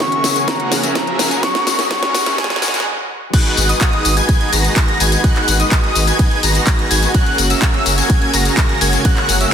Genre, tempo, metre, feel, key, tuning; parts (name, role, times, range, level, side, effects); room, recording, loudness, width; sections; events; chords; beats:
EDM, festival progressive house; 126 BPM; 4/4; straight; G# minor; A4 = 440 Hz
silver concert flute; melody; 0.0-2.9 s; G#5 to D#6; -20 LUFS; left 2 dB; dub echo
clear symphonic string section; sustained chords; 0.0-9.5 s; C#3 to G#4; -26 LUFS; left 1 dB; sidechain pumping
dense compressed supersaw; riff; 0.0-9.5 s; C#4 to A#5; -20 LUFS; right 1 dB; sidechain pumping, low-pass filter, dub echo
electronic kick drum; drums; 0.0-9.1 s; -15 LUFS; equal; high-pass filter on kick, high-pass filter on room
house drum kit; drums; 0.0-9.5 s; crash cymbal, handclaps, hi-hat, ride cymbal, snare drum, tambourine; -18 LUFS; left 2 dB
riser; sound effects; 0.0-2.9 s; -26 LUFS; right 2 dB
wide unison lead; arpeggios; 3.3-9.5 s; D#6 to A#6; -20 LUFS; equal; wide subtle chorus, sidechain pumping, dub echo
saturated sub bass; bass; 3.6-9.4 s; F#1 to G#1; -18 LUFS; equal; sidechain pumping
moderate lush hall reverb, RT60 1.7 s, digital ambience; dense, heavily limited modern master, high-pass filter; -12 LUFS; side -8 dB against mid
0.0-3.3 A section; 3.3-9.5 B section
build-up 0.0-3.3; drum fill 0.0-2.9; riser 0.0-2.9; filter sweep on supersaw synth 0.0-3.3; filter sweep 0.0-3.3; stop 2.9-3.3; drop 3.3-9.5
0.0 F#add9; 3.3 G#m7; 7.1 F#add9
0.00 0.48 0.95 | 1.43 1.91 2.38 2.86 | 3.34 3.81 4.29 4.76 | 5.24 5.72 6.19 6.67 | 7.14 7.62 8.10 8.57 | 9.05 9.53